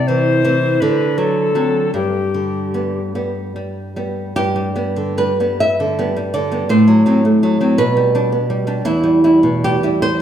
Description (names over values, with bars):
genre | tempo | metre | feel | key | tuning
romantic duo for recorder and classical guitar | 46-58 BPM (dotted quarters) | 6/8 | rubato | G major | A4 = 435 Hz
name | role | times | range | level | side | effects
alto recorder | melody | 0.0-3.1 s | G4 to C5 | -19 LUFS | left 4 dB | none
nylon-string guitar | accompaniment | 0.0-10.2 s | E2 to E5 | -14 LUFS | right 1 dB | none
room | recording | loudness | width
wet recital hall reverb, RT60 1.4 s | none | -14 LUFS | side -9 dB against mid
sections
0.0-4.4 A section; 4.4-10.2 B section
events
none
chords
0.0 C; 0.8 D7; 1.9 G; 6.7 F#dim/A; 7.8 G/B; 8.8 Em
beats
0.81 | 1.94 3.15 | 4.36 5.60 | 6.71 7.79 | 8.85 10.02